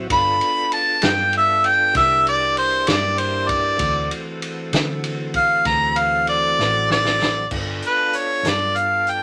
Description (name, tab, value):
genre	slow blues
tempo	65 BPM (dotted quarters)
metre	12/8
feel	straight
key	G mixolydian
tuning	A4 = 440 Hz
part	tonewheel organ	sustained chords	0.0-9.2 s	E3 to A4	-31 LUFS	equal	chorus vibrato, slow rotary speaker
part	vintage muted fingered electric bass	bass	0.0-9.2 s	G1 to D3	-31 LUFS	equal	none
part	clear harmonica	melody	0.1-9.2 s	B4 to B5	-19 LUFS	equal	overdrive
part	vintage drum kit	drums	0.1-9.2 s	crash cymbal, hi-hat, kick drum, ride cymbal, snare drum	-28 LUFS	equal	none
room	light reverb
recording	none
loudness	-19 LUFS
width	mono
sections	0.0-7.5 A section; 7.5-9.2 B section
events	harmonica solo 0.0-7.5; drum fill 6.6-7.5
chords	0.1 G9; 2.0 C9; 3.8 D9; 7.5 G9